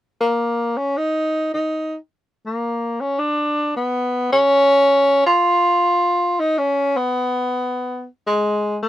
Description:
jazz; 107 BPM; 4/4; swing 67% on 8ths; A4 = 442 Hz
warm tenor saxophone; solo; 0.2-8.9 s; Ab3 to F4; -16 LUFS; equal
little or no reverb; dry, close 1970s-style studio recording; -16 LUFS; side -14 dB against mid
0.0-4.3 A section; 4.3-8.9 B section

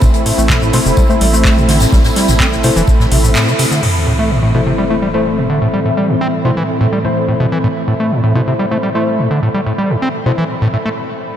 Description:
acid house; 126 BPM; 4/4; straight; A minor; A4 = 441 Hz
warm analog pad; sustained chords; 0.0-10.9 s; A2 to E4; -20 LUFS; equal; chorus, sidechain pumping
overdriven acid bass; riff; 0.0-10.9 s; G2 to C4; -15 LUFS; equal; distortion, tape echo
deep mellow chord stab; stabs; 0.0-10.3 s; A3 to C5; -22 LUFS; left 3 dB; chorus, tape echo
saturated sub bass; bass; 0.0-3.4 s; E1 to A1; -16 LUFS; equal; sidechain pumping
electro analog drum machine; drums; 0.0-3.9 s; cabasa, crash cymbal, handclaps, hi-hat; -20 LUFS; left 1 dB; overdrive
electronic kick drum; drums; 0.0-3.0 s; -13 LUFS; equal; overdrive
soft-mallet drum kit; drums; 0.0-3.8 s; hi-hat, snare drum, tambourine; -25 LUFS; equal; high-pass filter on hats, high-pass filter on snare, high-pass filter on perc, high-pass filter on room
ethereal airy pad; texture; 0.0-11.0 s; A4 to B5; -22 LUFS; right 1 dB; ensemble chorus, built-in reverb, sidechain pumping
sub drop; sound effects; 3.8-5.7 s; -21 LUFS; equal
moderate huge ambient reverb, RT60 8.2 s; dreamy mix soaked in reverb; -11 LUFS; side -10 dB against mid
0.0-3.8 A section; 3.8-11.4 B section
band accent 3.4; impact 3.8-5.7; filter sweep on analog synth pad 3.8-11.4; stop 11.0-11.4
0.0 Am

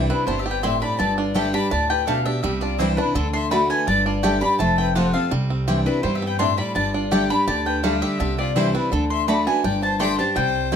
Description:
bluegrass; 166 BPM; 4/4; straight; C major; A4 = 440 Hz
picked steel-string acoustic guitar; accompaniment; 0.0-10.8 s; F2 to G4; -24 LUFS; left 1 dB
bluegrass banjo; arpeggios; 0.0-10.8 s; D3 to G4; -28 LUFS; right 6 dB
upright bass; bass; 0.0-10.8 s; F1 to G2; -27 LUFS; equal
mandolin; melody; 0.1-10.8 s; A4 to C6; -23 LUFS; left 2 dB; plate reverb
clear fiddle; second line; 0.1-10.8 s; D4 to G5; -31 LUFS; left 7 dB
mandolin; stabs; 0.6-10.8 s; A3 to A5; -27 LUFS; left 1 dB
light reverb; close, detailed microphones; -18 LUFS; side -8 dB against mid
0.0-10.8 A section
0.0 Cadd9; 1.0 Gsus2; 2.4 Cadd9; 3.2 D; 3.9 Gsus2; 4.6 F; 5.3 Cadd9; 6.8 Gsus2; 8.2 Cadd9; 8.9 D; 9.6 Gsus2

